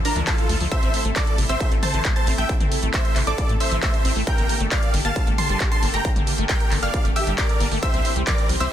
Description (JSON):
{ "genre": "uplifting trance", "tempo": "135 BPM", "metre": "4/4", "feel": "straight", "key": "unclear", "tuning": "A4 = 440 Hz", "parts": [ { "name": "lush unison pad", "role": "sustained chords", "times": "0.0-8.7 s", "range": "C3 to C5", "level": "-30 LUFS", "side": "equal", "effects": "chorus, sidechain pumping" }, { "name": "techno drum kit", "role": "drums", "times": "0.0-8.7 s", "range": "handclaps, hi-hat, toms", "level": "-28 LUFS", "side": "equal", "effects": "sidechain pumping on hats, sidechain pumping on toms" }, { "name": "big supersaw lead", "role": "melody", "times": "0.1-8.7 s", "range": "D4 to C6", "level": "-26 LUFS", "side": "right 1 dB", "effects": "sidechain pumping, ping-pong delay" }, { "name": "analog pluck", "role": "second line", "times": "0.1-8.7 s", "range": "A5 to C7", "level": "-33 LUFS", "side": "left 1 dB", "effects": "none" }, { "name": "liquid acid bass", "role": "arpeggios", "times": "0.2-8.7 s", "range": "C3 to G4", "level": "-31 LUFS", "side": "left 2 dB", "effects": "lush chorus, sidechain pumping, tape echo" }, { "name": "tight sequencer bass", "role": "bass", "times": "0.2-8.7 s", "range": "G1 to A2", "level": "-25 LUFS", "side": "equal", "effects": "sidechain pumping" }, { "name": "electronic kick drum", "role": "drums", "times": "0.3-8.4 s", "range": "none", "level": "-22 LUFS", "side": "equal", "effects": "distortion" } ], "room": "little or no reverb", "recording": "dense, heavily limited modern master", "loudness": "-18 LUFS", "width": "side -11 dB against mid", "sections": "0.0-8.7 A section", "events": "none", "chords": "0.0 Dmadd9; 0.7 Am; 4.3 Gmadd9; 7.8 C" }